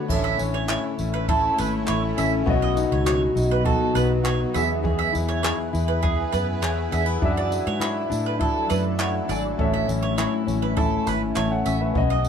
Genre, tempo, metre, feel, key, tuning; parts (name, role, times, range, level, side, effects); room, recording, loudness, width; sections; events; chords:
acoustic pop; 101 BPM; 4/4; straight; A major; A4 = 440 Hz
fingerpicked plugged-in steel-string acoustic guitar; accompaniment; 0.0-12.3 s; E2 to G#4; -26 LUFS; left 4 dB
shimmering ambient pad; sustained chords; 0.0-12.3 s; E3 to B4; -31 LUFS; right 2 dB; chorus, built-in reverb
clear concert grand piano; accompaniment; 0.1-12.3 s; B3 to A5; -30 LUFS; left 2 dB
vintage muted fingered electric bass; bass; 0.1-12.3 s; G#1 to A2; -26 LUFS; equal
jazz brush drum kit; drums; 0.1-12.3 s; crash cymbal, handclaps, kick drum, tambourine; -28 LUFS; right 1 dB
bowl-back mandolin; arpeggios; 0.2-12.2 s; G#4 to E5; -27 LUFS; right 6 dB
light reverb; minimal, uncompressed stereo recording, lossy compression artefacts; -20 LUFS; side -7 dB against mid
0.1-12.3 A section
grand piano fill 8.7-9.6
0.1 A; 2.5 B; 4.6 E; 7.2 Dadd9/F#; 9.6 A